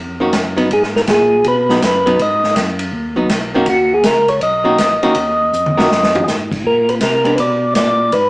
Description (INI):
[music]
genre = soul jazz organ trio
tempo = 162 BPM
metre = 4/4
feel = swing 65% on 8ths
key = Eb minor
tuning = A4 = 440 Hz
[part]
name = tonewheel organ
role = bass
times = 0.0-8.3 s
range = Bb1 to C3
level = -22 LUFS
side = equal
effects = slow rotary speaker
[part]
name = archtop guitar, miked and amplified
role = accompaniment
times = 0.2-7.4 s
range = Eb3 to Gb4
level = -16 LUFS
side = equal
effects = none
[part]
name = swinging big-band drum kit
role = drums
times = 0.3-8.2 s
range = crash cymbal, hi-hat, kick drum, ride cymbal, snare drum, toms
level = -19 LUFS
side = equal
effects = none
[part]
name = percussive tonewheel organ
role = melody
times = 0.7-8.3 s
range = Gb4 to Eb5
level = -13 LUFS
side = equal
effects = slow rotary speaker
[sound]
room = wet studio reverb, RT60 0.9 s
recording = heard from further back in the room, small speaker sound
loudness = -12 LUFS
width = side -24 dB against mid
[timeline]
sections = 0.0-8.3 A section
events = drum fill 5.5-6.3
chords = 0.0 Ebm7; 0.7 Abm7; 3.7 Ebm7; 6.6 Bb(b9)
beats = 0.33 | 0.70 1.07 1.44 1.81 | 2.19 2.56 2.93 3.30 | 3.67 4.04 4.42 4.79 | 5.16 5.53 5.90 6.27 | 6.64 7.02 7.39 7.76 | 8.13